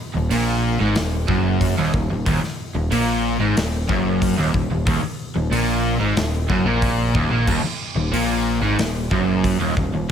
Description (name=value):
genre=hard rock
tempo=92 BPM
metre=4/4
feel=straight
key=Eb minor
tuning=A4 = 440 Hz
part: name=crunchy overdriven guitar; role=riff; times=0.1-10.1 s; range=Eb2 to Bb2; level=-25 LUFS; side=left 1 dB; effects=none
part: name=overdriven semi-hollow guitar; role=riff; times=0.1-10.1 s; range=Eb2 to Bb2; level=-24 LUFS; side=right 8 dB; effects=phaser
part: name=growling picked electric bass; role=bass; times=0.1-10.1 s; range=Eb1 to Bb1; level=-24 LUFS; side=equal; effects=overdrive
part: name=sludgy distorted guitar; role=riff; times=0.2-10.1 s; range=Eb2 to Bb2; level=-25 LUFS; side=left 8 dB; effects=overdrive
part: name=big rock drum kit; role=drums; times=0.3-9.9 s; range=crash cymbal, hi-hat, kick drum, snare drum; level=-25 LUFS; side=left 1 dB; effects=none
room=light reverb, small room ambience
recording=none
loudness=-18 LUFS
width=side -8 dB against mid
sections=0.0-10.1 A section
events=none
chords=0.0 Ebm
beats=0.30 0.95 1.60 | 2.25 2.90 3.56 4.21 | 4.86 5.51 6.17 6.82 | 7.47 8.13 8.78 9.43 | 10.09